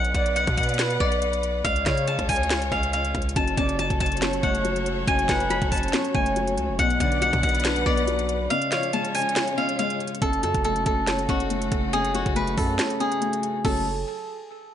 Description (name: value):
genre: hip hop, trap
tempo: 140 BPM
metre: 4/4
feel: half-time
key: F# harmonic minor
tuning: A4 = 436 Hz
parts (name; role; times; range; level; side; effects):
- steel-string zither; melody; 0.0-13.8 s; F#4 to B5; -25 LUFS; left 1 dB; tape echo
- rich chamber string section; sustained chords; 0.0-13.8 s; C#3 to F#5; -32 LUFS; left 2 dB; none
- distorted 808-style bass; bass; 0.0-14.0 s; F#1 to C#3; -29 LUFS; right 1 dB; distortion
- trap drum kit; drums; 0.0-13.8 s; crash cymbal, finger snaps, hi-hat, kick drum, snare drum; -27 LUFS; right 1 dB; none
- breathy flute-like synth lead; second line; 0.1-8.9 s; B4 to D5; -32 LUFS; right 3 dB; chorus, tape echo
- felt-muted upright piano; accompaniment; 3.4-13.8 s; F#2 to C#5; -28 LUFS; left 3 dB; none
room: light reverb, small room reverb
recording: nothing above 10.4 kHz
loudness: -21 LUFS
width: side -10 dB against mid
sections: 0.0-10.2 A section; 10.2-13.6 B section; 13.6-14.7 C section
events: break 8.5-10.2; kick muted 12.8-13.6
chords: 0.0 Bm; 1.6 C#; 3.4 F#m; 6.8 Bm; 8.5 C#; 10.2 F#m